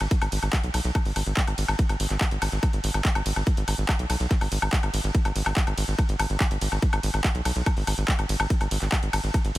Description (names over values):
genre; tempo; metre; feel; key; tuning
psychedelic trance; 143 BPM; 4/4; straight; G# minor; A4 = 440 Hz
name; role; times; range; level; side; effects
tight sequencer bass; bass; 0.0-9.6 s; G#1 to B1; -26 LUFS; equal; none
techno drum kit; drums; 0.0-9.6 s; handclaps, hi-hat, ride cymbal, woodblock; -28 LUFS; left 1 dB; overdrive
electronic kick drum; drums; 0.1-9.4 s; none; -23 LUFS; equal; overdrive
room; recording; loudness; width
light reverb, digital ambience; none; -22 LUFS; side -17 dB against mid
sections
0.0-9.6 A section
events
none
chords
none